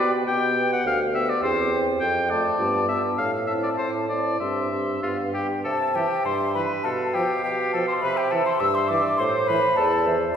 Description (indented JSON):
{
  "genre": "quick classical-period movement for wind quintet",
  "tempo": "102 BPM",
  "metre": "2/4",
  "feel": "rubato",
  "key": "C major",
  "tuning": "A4 = 442 Hz",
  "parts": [
    { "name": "concert flute", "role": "melody", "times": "0.0-10.1 s", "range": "F5 to E6", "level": "-27 LUFS", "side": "left 4 dB", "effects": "none" },
    { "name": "clear oboe", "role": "second line", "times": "0.0-10.1 s", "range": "F4 to G5", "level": "-26 LUFS", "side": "left 2 dB", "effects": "none" },
    { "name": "mellow clarinet", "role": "accompaniment", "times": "0.0-10.4 s", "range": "E4 to F5", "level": "-30 LUFS", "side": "right 3 dB", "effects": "none" },
    { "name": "warm French horn", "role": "accompaniment", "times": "0.0-10.2 s", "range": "E3 to C4", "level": "-31 LUFS", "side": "right 2 dB", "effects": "none" },
    { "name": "mellow bassoon", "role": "bass", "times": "0.0-10.3 s", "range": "D2 to C3", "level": "-26 LUFS", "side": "right 2 dB", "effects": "none" }
  ],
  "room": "wet scoring stage reverb, RT60 2.0 s",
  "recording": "heard from further back in the room",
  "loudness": "-21 LUFS",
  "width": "side -8 dB against mid",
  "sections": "0.0-5.7 A section; 5.7-10.4 B section",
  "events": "none",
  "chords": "0.0 G/B; 0.8 G7/D; 1.4 C/E; 2.0 Dm/F; 2.6 G9; 3.2 Am; 4.4 C/G; 5.0 G; 5.7 C; 6.8 G9/B; 8.0 C; 9.2 Am"
}